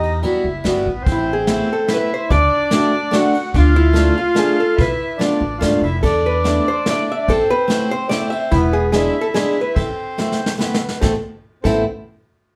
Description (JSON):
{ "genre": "musette waltz", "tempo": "145 BPM", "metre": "3/4", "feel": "straight", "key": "A harmonic minor", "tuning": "A4 = 440 Hz", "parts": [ { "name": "archtop guitar, miked and amplified", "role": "melody", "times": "0.0-11.8 s", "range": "D4 to E5", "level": "-22 LUFS", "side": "equal", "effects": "none" }, { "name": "accordion", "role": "second line", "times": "0.0-11.8 s", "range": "B3 to F#4", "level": "-24 LUFS", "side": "equal", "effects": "none" }, { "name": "upright bass", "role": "bass", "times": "0.0-11.8 s", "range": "E1 to E2", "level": "-22 LUFS", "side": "equal", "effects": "none" }, { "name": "vintage brush drum kit", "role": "drums", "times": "0.0-11.7 s", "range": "crash cymbal, kick drum, ride cymbal, snare drum", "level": "-25 LUFS", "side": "equal", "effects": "none" }, { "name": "picked steel-string acoustic guitar", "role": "accompaniment", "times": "0.2-11.8 s", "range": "G3 to F#4", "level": "-22 LUFS", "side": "equal", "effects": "none" } ], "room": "wet studio reverb, RT60 0.6 s", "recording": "heard from further back in the room", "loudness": "-17 LUFS", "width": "mono", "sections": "0.0-1.1 A section; 1.1-11.0 B section; 11.0-12.3 C section", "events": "drum fill 10.2-11.0", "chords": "0.0 Emadd9; 1.1 Amadd9; 2.3 D7; 3.5 Dm7; 4.8 Bm7b5; 6.0 E7sus4; 7.3 Amadd9; 8.5 E7; 9.8 Amadd9", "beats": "0.22 0.64 | 1.06 1.48 1.89 | 2.31 2.72 3.13 | 3.54 3.95 4.36 | 4.78 5.19 5.61 | 6.03 6.45 6.87 | 7.28 7.69 8.10 | 8.52 8.93 9.34 | 9.76 10.17 10.59 | 11.02 11.43" }